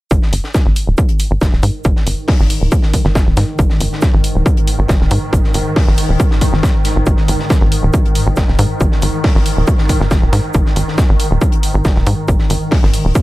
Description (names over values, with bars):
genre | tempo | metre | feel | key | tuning
driving peak-time techno | 138 BPM | 4/4 | straight | unclear | A4 = 439 Hz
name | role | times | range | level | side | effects
tight sequencer bass | bass | 0.1-13.1 s | D#1 to G#2 | -15 LUFS | equal | sidechain pumping
swarming drone | drone | 1.0-13.2 s | G#2 to D#3 | -21 LUFS | equal | built-in reverb, sidechain pumping
deep reggae drum kit | drums | 0.1-13.2 s | hi-hat, shaker, snare drum | -27 LUFS | left 1 dB | high-pass filter on hats, high-pass filter on snare, high-pass filter on perc, high-pass filter on room
electronic kick drum | drums | 0.1-13.2 s | none | -13 LUFS | equal | overdrive
electronic hi-hat | drums | 0.3-13.0 s | none | -24 LUFS | left 1 dB | overdrive
room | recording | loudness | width
small room ambience | none | -11 LUFS | side -18 dB against mid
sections
0.1-13.2 A section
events
none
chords
0.1 G#5